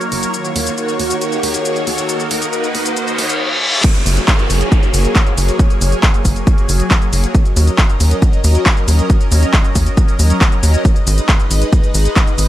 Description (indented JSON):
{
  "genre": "uplifting trance",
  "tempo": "137 BPM",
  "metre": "4/4",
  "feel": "straight",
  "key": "F# major",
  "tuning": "A4 = 438 Hz",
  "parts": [
    { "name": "lush unison pad", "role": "sustained chords", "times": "0.0-12.5 s", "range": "D#3 to D#5", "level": "-20 LUFS", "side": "equal", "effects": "chorus, phaser, sidechain pumping" },
    { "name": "house drum kit", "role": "drums", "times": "0.0-12.5 s", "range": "crash cymbal, handclaps, hi-hat, shaker", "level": "-20 LUFS", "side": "equal", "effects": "overdrive, high-pass filter on hats, high-pass filter on perc, high-pass filter on cymbals, high-pass filter on snare, high-pass filter on room" },
    { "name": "riser, reverse cymbal and downlifter", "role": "sound effects", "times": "0.1-7.3 s", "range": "none", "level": "-21 LUFS", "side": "left 1 dB", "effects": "none" },
    { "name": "tight sequencer bass", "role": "bass", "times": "0.1-12.5 s", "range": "F#1 to D#2", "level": "-14 LUFS", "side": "equal", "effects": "sidechain pumping" },
    { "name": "electronic kick drum", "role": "drums", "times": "3.8-12.3 s", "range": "none", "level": "-13 LUFS", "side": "equal", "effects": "overdrive" }
  ],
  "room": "little or no reverb",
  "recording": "high-pass filter, lossy compression artefacts",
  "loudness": "-12 LUFS",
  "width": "side -14 dB against mid",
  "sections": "0.0-3.8 A section; 3.8-12.5 B section",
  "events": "build-up 0.0-3.8; riser 0.1-3.4; filter sweep 0.0-3.8; reverse cymbal 3.0-3.8; drop 3.8-12.5",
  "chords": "0.3 D#m7; 3.8 F#add9; 7.3 D#m7; 10.8 G#m"
}